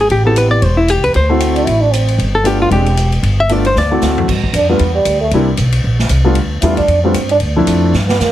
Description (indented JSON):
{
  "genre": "jazz, small-group swing and bop",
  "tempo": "230 BPM",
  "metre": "4/4",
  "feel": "swing 58% on 8ths",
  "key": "G mixolydian",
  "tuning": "A4 = 441 Hz",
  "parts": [
    { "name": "hollow-body jazz guitar", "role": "melody", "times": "0.0-4.2 s", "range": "E4 to E5", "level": "-14 LUFS", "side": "left 1 dB", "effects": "plate reverb" },
    { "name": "upright bass", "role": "bass", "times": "0.0-8.3 s", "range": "E1 to G2", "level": "-15 LUFS", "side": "equal", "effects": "none" },
    { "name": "swinging big-band drum kit", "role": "drums", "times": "0.1-8.3 s", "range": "crash cymbal, hi-hat, kick drum, ride cymbal, snare drum, toms", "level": "-22 LUFS", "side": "left 1 dB", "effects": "none" },
    { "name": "dark concert grand piano", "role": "accompaniment", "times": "0.3-7.9 s", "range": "F3 to G4", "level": "-16 LUFS", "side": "left 1 dB", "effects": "none" },
    { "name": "trombone with cup mute", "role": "second line", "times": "1.4-2.3, 4.6-8.3 s", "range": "G3 to E4", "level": "-15 LUFS", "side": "right 3 dB", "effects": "none" }
  ],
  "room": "moderate studio reverb, RT60 0.7 s",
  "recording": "heavily compressed radio sound, multiband compression",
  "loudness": "-11 LUFS",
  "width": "side -13 dB against mid",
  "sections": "0.0-4.3 A section; 4.3-8.3 B section",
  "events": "drum fill 3.8-4.3, 7.9; trombone solo 4.3-8.3",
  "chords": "0.1 Am7; 1.1 D7; 2.2 G7; 2.7 E7alt; 3.2 G7; 3.8 D7; 4.3 G7; 5.3 C7(no3); 6.4 G7; 7.4 Dm7"
}